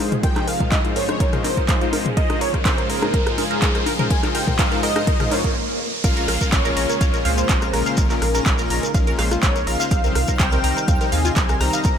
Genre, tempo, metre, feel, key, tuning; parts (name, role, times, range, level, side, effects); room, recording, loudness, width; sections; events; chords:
progressive house; 124 BPM; 4/4; straight; Bb dorian; A4 = 440 Hz
lush unison pad; sustained chords; 0.0-12.0 s; C3 to Ab4; -30 LUFS; equal; chorus, sidechain pumping
tight sequenced synth; arpeggios; 0.0-11.9 s; F4 to Bb5; -28 LUFS; right 2 dB; chorus, sidechain pumping, ping-pong delay
soft supersaw; stabs; 0.0-11.9 s; Ab2 to Eb5; -27 LUFS; left 4 dB; sidechain pumping, ping-pong delay
riser, swell and downlifter; sound effects; 0.1-9.9 s; -30 LUFS; right 1 dB
deep house drum kit; drums; 0.1-11.9 s; handclaps, hi-hat, rim click; -26 LUFS; equal; overdrive
punchy analog drum machine; percussion; 0.1-5.4 s; congas, rim click, toms; -27 LUFS; left 5 dB; sidechain pumping on perc, sidechain pumping on toms, sidechain pumping on snare
wide unison lead; melody; 0.2-12.0 s; Ab4 to Bb5; -26 LUFS; equal; analog chorus, ping-pong delay
electronic kick drum; drums; 0.2-11.9 s; -21 LUFS; equal; overdrive
round analog bass; bass; 6.0-11.9 s; Bb1 to Eb2; -24 LUFS; equal; sidechain pumping
shekere; percussion; 6.0-11.9 s; -31 LUFS; left 3 dB
twinkling granular texture; texture; 6.8-12.0 s; F6; -34 LUFS; left 1 dB; built-in reverb, sidechain pumping
light reverb, digital ambience; -17 LUFS; side -8 dB against mid
0.0-6.0 A section; 6.0-12.0 B section
build-up 0.0-6.0; filter sweep on synth arpeggio sound 0.0-6.0; filter sweep on supersaw synth 0.0-6.0; riser 0.1-6.0; swell 5.1-6.0; stop 5.6-6.0; drop 6.0-12.0
0.0 Ab6; 2.2 Db; 6.0 Bbm7; 9.9 Cm